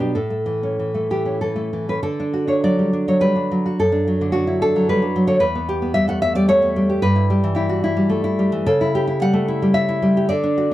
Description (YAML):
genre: romantic piece for solo classical guitar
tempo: 94-114 BPM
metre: 3/4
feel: rubato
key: D major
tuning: A4 = 440 Hz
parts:
  - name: nylon-string guitar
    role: solo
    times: 0.0-10.7 s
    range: E2 to F#5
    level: -16 LUFS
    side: equal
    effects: none
room: light reverb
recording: dark, warm production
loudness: -16 LUFS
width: side -14 dB against mid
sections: 0.0-2.0 A section; 2.0-10.7 B section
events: none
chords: 0.2 A; 2.0 D; 3.8 D/F#; 5.4 Em; 7.0 Em/G; 8.7 A7/C#